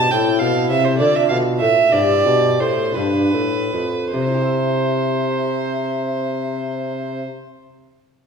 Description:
classical, baroque-style sonata movement with continuo; 49-69 BPM (dotted quarters); 6/8; rubato; C major; A4 = 444 Hz
baroque flute; melody; 0.0-7.2 s; D4 to E5; -25 LUFS; left 9 dB
rich violin; second line; 0.0-7.2 s; B4 to A5; -19 LUFS; right 4 dB
lute; accompaniment; 0.0-7.5 s; F2 to E5; -24 LUFS; left 1 dB
mellow bassoon; bass; 0.0-7.2 s; F2 to D3; -22 LUFS; equal
wet recital hall reverb, RT60 1.5 s; heard from further back in the room; -16 LUFS; side -6 dB against mid
0.0-4.1 A section; 4.1-8.3 B section
slowing down 0.0-4.1
0.1 Am; 1.0 Dm; 1.9 C/G; 3.0 G7; 4.1 C

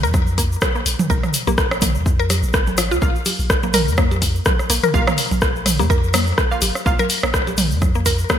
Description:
minimal techno; 125 BPM; 4/4; swing 56% on 16ths; A4 = 441 Hz
mallet-like synth pluck; riff; 0.0-8.3 s; F3 to Bb4; -24 LUFS; left 2 dB; chorus, phaser, sidechain pumping, ping-pong delay
punchy sub bass; bass; 0.0-8.2 s; Ab1 to F2; -22 LUFS; equal; sidechain pumping
egg shaker; percussion; 0.0-8.4 s; -29 LUFS; left 2 dB
electronic kick drum; drums; 0.1-8.4 s; -20 LUFS; equal
garage drum kit; percussion; 0.1-8.4 s; congas, cowbell, rim click, toms; -23 LUFS; right 2 dB; gated reverb, ping-pong delay
punchy analog drum machine; drums; 0.4-8.4 s; hi-hat, rim click; -22 LUFS; left 2 dB; gated reverb
filtered dub chord stab; stabs; 3.0-6.9 s; Bb3 to F5; -27 LUFS; right 3 dB; chorus, vintage 12-bit sampler grit, ping-pong delay
light reverb; bright 1980s-style digital production; -15 LUFS; side -9 dB against mid
0.0-8.4 A section
0.0 Bb5

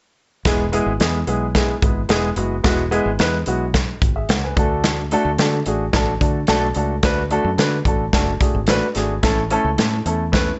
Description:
uptempo 1960s-style soul; 109 BPM; 4/4; straight; E mixolydian; A4 = 439 Hz
warm upright piano; accompaniment; 0.5-10.5 s; G#3 to G#5; -23 LUFS; equal
fingered electric bass; bass; 0.5-10.5 s; E1 to D3; -26 LUFS; equal
natural country drum kit; drums; 0.5-10.5 s; hi-hat, kick drum, snare drum; -22 LUFS; equal
light reverb; nothing above 7.9 kHz; -19 LUFS; mono
0.5-10.6 A section
0.5 E; 4.6 D; 9.2 A

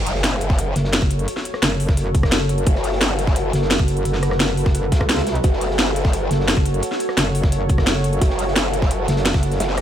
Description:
dark technical drum and bass; 173 BPM; 4/4; straight; F# minor; A4 = 440 Hz
deep dark ambient pad; sustained chords; 0.6-9.8 s; F#4 to C#5; -25 LUFS; equal; chorus, built-in reverb, sidechain pumping
growl bass; bass; 0.0-9.8 s; F#1; -22 LUFS; equal; chorus, tube saturation
impact; sound effects; 0.0-1.3 s; -34 LUFS; equal
crunchy breakbeat drum kit; drums; 0.1-9.8 s; hi-hat, snare drum; -32 LUFS; equal; high-pass filter on hats, small room ambience, high-pass filter on snare, high-pass filter on room
drum and bass drum kit; drums; 0.1-9.8 s; hi-hat, rim click, snare drum; -22 LUFS; equal; small room ambience
electronic kick drum; drums; 0.5-9.4 s; -18 LUFS; equal; small room ambience
metallic wobble bass; bass; 0.8-9.6 s; F#1 to C#2; -20 LUFS; equal; chorus
little or no reverb; -16 LUFS; side -10 dB against mid
0.0-9.8 A section
impact 0.0-1.3
0.0 F#m

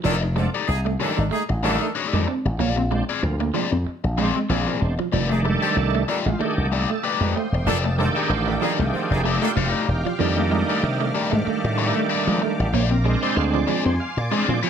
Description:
funk; 95 BPM; 4/4; swing 56% on 16ths; F mixolydian; A4 = 440 Hz
clear horn section; second line; 0.0-9.5 s; D3 to C5; -28 LUFS; left 1 dB
crunchy overdriven guitar; accompaniment; 0.0-14.7 s; A3 to D5; -26 LUFS; left 7 dB; wah
electric guitar at the edge of break-up; riff; 0.0-14.7 s; F3 to C4; -28 LUFS; right 6 dB
slap bass with an envelope filter; bass; 0.0-14.6 s; E1 to F3; -23 LUFS; equal
bright tonewheel organ; stabs; 0.4-14.7 s; Bb2 to F5; -26 LUFS; right 4 dB; overdrive, chorus vibrato, slow rotary speaker
soft string machine; sustained chords; 5.9-14.7 s; F5 to F6; -33 LUFS; left 1 dB; ensemble chorus
moderate large studio reverb, RT60 0.8 s; -19 LUFS; side -8 dB against mid
0.0-5.1 A section; 5.1-14.7 B section
tonewheel organ solo 5.1-14.7
0.0 F13; 2.6 Bb9; 5.1 F13; 12.7 Bb9

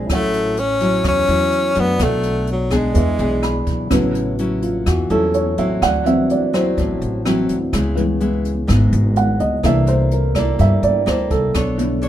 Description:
bossa nova; 126 BPM; 4/4; straight; A major; A4 = 440 Hz
dark baby grand piano; accompaniment; 0.0-12.1 s; C#3 to B5; -20 LUFS; right 2 dB
nylon-string guitar; accompaniment; 0.0-12.1 s; G#2 to C#5; -22 LUFS; left 1 dB
upright bass; bass; 0.0-12.1 s; G#1 to G2; -21 LUFS; equal
bright tenor saxophone; melody; 0.1-3.7 s; F#3 to C#4; -18 LUFS; left 1 dB
jazz brush drum kit; drums; 0.1-12.1 s; hi-hat, kick drum, rim click; -25 LUFS; equal
moderate studio reverb, RT60 0.8 s; minimal, uncompressed stereo recording; -15 LUFS; side -11 dB against mid
0.0-3.9 A section; 3.9-12.1 B section
grand piano fill 3.2-3.9; grand piano solo 3.9-12.1
0.1 A6; 2.0 Bm7; 3.0 E7; 3.9 A6; 5.8 D9; 7.7 C#m7; 9.6 C13; 11.5 Bm9

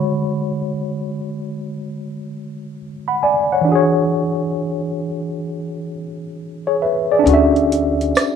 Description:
lo-fi hip hop; 67 BPM; 4/4; swing 66% on 16ths; A4 = 440 Hz
tine electric piano; accompaniment; 0.0-8.4 s; D3 to B5; -18 LUFS; left 1 dB; overdrive, fast stereo tremolo, cassette tape, low-pass filter
upright bass; bass; 7.3-8.1 s; D2; -20 LUFS; equal
booming analog drum machine; drums; 7.3-8.4 s; hi-hat, rim click; -20 LUFS; right 2 dB
tambourine; percussion; 8.2-8.4 s; -33 LUFS; right 7 dB
moderate studio reverb, RT60 0.5 s; rough home demo mix, cassette tape; -16 LUFS; side -7 dB against mid
0.0-7.3 A section; 7.3-8.4 B section
filter sweep on tine electric piano 0.0-7.3; kick muted 7.3-8.4
0.0 Dmaj7#11; 3.7 E13; 7.3 Dmaj9

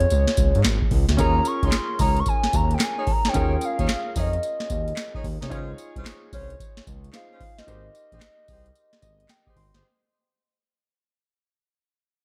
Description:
R&B, new jack swing; 111 BPM; 4/4; swing 64% on 16ths; Ab major; A4 = 437 Hz
hollow clarinet-like synth lead; melody; 0.0-9.6 s; Db5 to Db6; -29 LUFS; equal; chorus
warm concert grand piano; accompaniment; 0.0-9.9 s; Db4 to C6; -35 LUFS; equal
smooth gliding synth bass; bass; 0.0-9.8 s; G1 to Ab2; -26 LUFS; equal
booming analog drum machine; drums; 0.0-9.8 s; handclaps, hi-hat, kick drum, snare drum, tambourine; -27 LUFS; equal
mellow horn section; stabs; 1.2-9.8 s; Db4 to Db5; -37 LUFS; equal
light reverb; dark, warm production; -23 LUFS; mono
0.0-9.8 A section
fade-out 0.0-9.8; grand piano fill 8.8-9.8
0.0 Dbmaj7; 1.2 Eb7sus4; 5.5 Dbmaj7; 7.7 Abmaj7

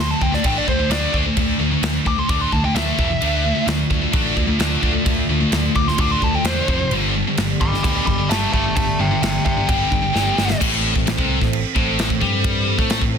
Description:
heavy metal; 130 BPM; 4/4; straight; A4 = 443 Hz
dark smooth lead guitar; melody; 0.0-10.6 s; C5 to D6; -24 LUFS; equal; overdrive, ping-pong delay
scooped high-gain guitar; riff; 0.0-13.2 s; E2 to D4; -20 LUFS; left 1 dB; distortion
overdriven picked electric bass; bass; 0.0-13.2 s; E1 to A2; -24 LUFS; equal
modern studio drum kit; drums; 0.2-13.1 s; crash cymbal, kick drum, snare drum; -22 LUFS; equal
dark analog pad; sustained chords; 3.2-13.2 s; C3 to D5; -29 LUFS; equal; chorus
small room ambience; dense, heavily limited modern master; -16 LUFS; side -7 dB against mid
0.0-10.6 A section; 10.6-13.2 B section
lead electric guitar solo 0.0-10.6; drum fill 10.2-10.6
0.0 D5; 3.0 E5; 3.2 Dm; 6.7 F5; 6.9 G; 10.6 Am

